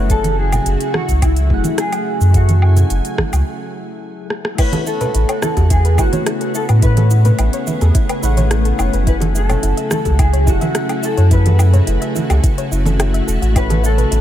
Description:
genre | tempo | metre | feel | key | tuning
sunset chillout | 107 BPM | 4/4 | straight | F# minor | A4 = 435 Hz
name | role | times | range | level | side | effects
soft electric-piano-like synth keys | accompaniment | 0.0-14.2 s | F#3 to G#5 | -26 LUFS | moving between left 8 dB and right 5 dB | chorus, phaser, auto-pan, tape echo
soft string machine | sustained chords | 0.0-14.2 s | C#3 to G#5 | -25 LUFS | equal | ensemble chorus
warm sub bass | bass | 0.0-14.2 s | E1 to A2 | -13 LUFS | equal | none
mellow electric guitar | melody | 0.1-14.2 s | E4 to B4 | -22 LUFS | equal | analog chorus, tape echo
electronic kick drum | drums | 0.1-13.7 s | none | -16 LUFS | equal | none
smooth R&B drum kit | drums | 0.1-14.2 s | cabasa, crash cymbal, hi-hat, rim click, woodblock | -24 LUFS | equal | none
congas and bongos | percussion | 0.2-14.1 s | none | -23 LUFS | right 3 dB | none
soft round pluck | arpeggios | 4.6-14.2 s | E4 to E5 | -27 LUFS | left 4 dB | chorus, tape echo
room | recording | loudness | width
digital ambience | none | -13 LUFS | side -12 dB against mid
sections
0.0-4.6 A section; 4.6-14.2 B section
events
break 3.5-4.6; drum fill 4.3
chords
0.1 F#m7; 4.6 A69; 9.1 F#m7; 13.6 A69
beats
| 0.10 0.66 1.22 1.78 | 2.34 2.90 3.46 4.02 | 4.58 5.15 5.71 6.27 | 6.83 7.39 7.95 8.51 | 9.07 9.63 10.19 10.75 | 11.31 11.88 12.44 13.00 | 13.56 14.12

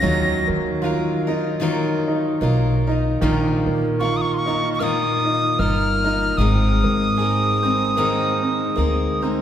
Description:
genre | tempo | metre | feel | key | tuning
acoustic folk duo or small band | 76 BPM | 4/4 | swing 57% on 8ths | Eb dorian | A4 = 440 Hz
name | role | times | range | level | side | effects
tin whistle | melody | 0.0-9.2 s | C6 to Bb6 | -22 LUFS | equal | none
picked steel-string acoustic guitar | accompaniment | 0.0-9.4 s | Ab2 to Bb4 | -23 LUFS | left 3 dB | none
bright upright piano | arpeggios | 0.0-9.4 s | Eb3 to Ab4 | -24 LUFS | right 4 dB | none
upright bass | bass | 0.0-9.4 s | G1 to Eb3 | -23 LUFS | equal | none
room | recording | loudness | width
wet church reverb, RT60 2.9 s | recorded in a church or concert hall | -18 LUFS | side -10 dB against mid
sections
0.0-9.4 A section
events
none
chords
0.0 Ebmadd9; 3.2 Bbsus4; 6.4 Abadd9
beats
| 0.03 0.83 1.62 2.42 | 3.21 4.00 4.80 5.59 | 6.39 7.18 7.97 8.77

